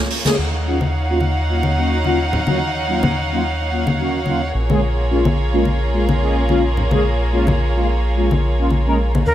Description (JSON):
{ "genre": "nu-disco, nu disco", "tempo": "108 BPM", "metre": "4/4", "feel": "swing 55% on 16ths", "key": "Eb minor", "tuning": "A4 = 440 Hz", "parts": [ { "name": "warm chamber violin section", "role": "sustained chords", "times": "0.0-9.3 s", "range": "Bb3 to Gb5", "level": "-23 LUFS", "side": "right 1 dB", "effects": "none" }, { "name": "mellow synth brass", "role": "accompaniment", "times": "0.2-9.0 s", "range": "Gb3 to Bb4", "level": "-22 LUFS", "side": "left 1 dB", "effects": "chorus, phaser, cassette tape, digital delay" }, { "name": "congas", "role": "percussion", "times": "0.2-9.2 s", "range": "none", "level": "-22 LUFS", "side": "left 2 dB", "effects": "none" }, { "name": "chorused synth bass", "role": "bass", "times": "0.4-9.3 s", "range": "Bb1 to Eb2", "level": "-20 LUFS", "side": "equal", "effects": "none" }, { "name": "breathy bright jazz flute", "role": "melody", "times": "9.3 s", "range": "Bb4", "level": "-15 LUFS", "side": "equal", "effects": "none" } ], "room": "light reverb, studio ambience", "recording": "none", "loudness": "-16 LUFS", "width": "side -12 dB against mid", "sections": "0.4-9.3 A section", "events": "filter sweep on analog polysynth 0.4-9.3", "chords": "0.4 Ebm9; 4.5 Bbm7" }